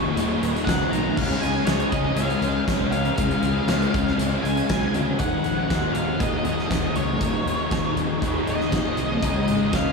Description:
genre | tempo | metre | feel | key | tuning
rock, shoegaze and dream pop | 119 BPM | 4/4 | straight | Eb minor | A4 = 438 Hz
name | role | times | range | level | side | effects
thick fuzz guitar | riff | 0.0-9.9 s | Eb2 to Db4 | -23 LUFS | left 1 dB | distortion, ensemble chorus
fuzz fingered electric bass | bass | 0.0-9.9 s | Eb1 to D2 | -28 LUFS | left 1 dB | overdrive
huge arena drum kit | drums | 0.2-9.8 s | crash cymbal, hi-hat, kick drum, snare drum | -27 LUFS | equal | none
octave-fuzz lead guitar | melody | 0.6-9.9 s | Db5 to Bb5 | -28 LUFS | left 1 dB | distortion, analog delay
room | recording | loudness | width
wet huge ambient reverb, RT60 8.6 s | dreamy mix soaked in reverb | -20 LUFS | side -4 dB against mid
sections
0.0-5.2 A section; 5.2-9.9 B section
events
none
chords
0.0 Eb5; 1.2 Db; 5.2 Eb7(no3); 9.2 Db

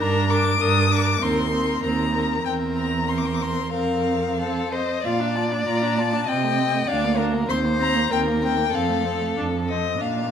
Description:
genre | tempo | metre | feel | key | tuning
quick classical-period movement for string quartet | 90-100 BPM | 2/4 | rubato | Bb major | A4 = 440 Hz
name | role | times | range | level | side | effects
rich violin | melody | 0.0-10.3 s | Eb5 to Eb6 | -25 LUFS | left 8 dB | none
rich violin | second line | 0.0-9.7 s | A4 to Eb5 | -26 LUFS | left 3 dB | none
rich viola | accompaniment | 0.0-10.3 s | A3 to F4 | -27 LUFS | right 2 dB | none
rich cello | bass | 0.0-10.3 s | D2 to C3 | -25 LUFS | right 5 dB | none
room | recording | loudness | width
wet recital hall reverb, RT60 1.3 s | none | -20 LUFS | side -8 dB against mid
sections
0.0-5.0 A section; 5.0-10.3 B section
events
none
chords
0.0 Gm; 1.2 Cm7/Eb; 2.5 C7/E; 3.7 Fsus4; 5.0 Bb; 6.3 Cm6; 6.9 Bb/D; 7.5 Cm7/Eb; 8.7 F

